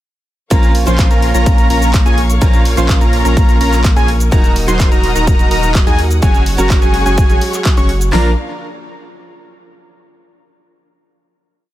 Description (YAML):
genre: EDM, festival progressive house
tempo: 126 BPM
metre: 4/4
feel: straight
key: Bb minor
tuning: A4 = 440 Hz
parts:
  - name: picked steel-string acoustic guitar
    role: accompaniment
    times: 0.5-8.3 s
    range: Bb2 to Gb4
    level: -20 LUFS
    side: right 4 dB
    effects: sidechain pumping, digital delay
  - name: dark chamber string section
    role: sustained chords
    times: 0.5-8.4 s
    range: Bb3 to Eb6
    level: -26 LUFS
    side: left 3 dB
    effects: sidechain pumping
  - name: wide unison lead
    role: arpeggios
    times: 0.5-8.3 s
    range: Ab5 to Db6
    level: -20 LUFS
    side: left 1 dB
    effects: sidechain pumping, digital delay
  - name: dense compressed supersaw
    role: riff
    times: 0.5-8.3 s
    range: Db4 to Db5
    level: -20 LUFS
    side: equal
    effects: sidechain pumping, digital delay
  - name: saturated sub bass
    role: bass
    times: 0.5-8.4 s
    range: Eb1 to Eb2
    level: -16 LUFS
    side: equal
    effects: sidechain pumping
  - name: big-room dance drum kit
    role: drums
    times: 0.5-8.2 s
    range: hi-hat, kick drum, snare drum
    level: -12 LUFS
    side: equal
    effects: overdrive, studio reverb
  - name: big-room dance drum kit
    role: drums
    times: 0.5-8.1 s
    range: cabasa, handclaps, hi-hat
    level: -23 LUFS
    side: equal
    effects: studio reverb
room: little or no reverb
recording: none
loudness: -10 LUFS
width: side -14 dB against mid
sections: 0.5-8.1 drop; 8.1-10.0 final chord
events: drop 0.5-8.1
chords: 0.5 Bbm; 4.3 Ebm; 6.2 Gbsus2; 8.1 Bb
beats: | 0.51 0.99 1.46 1.94 | 2.42 2.89 3.37 3.85 | 4.32 4.80 5.27 5.75 | 6.23 6.70 7.18 7.65 | 8.13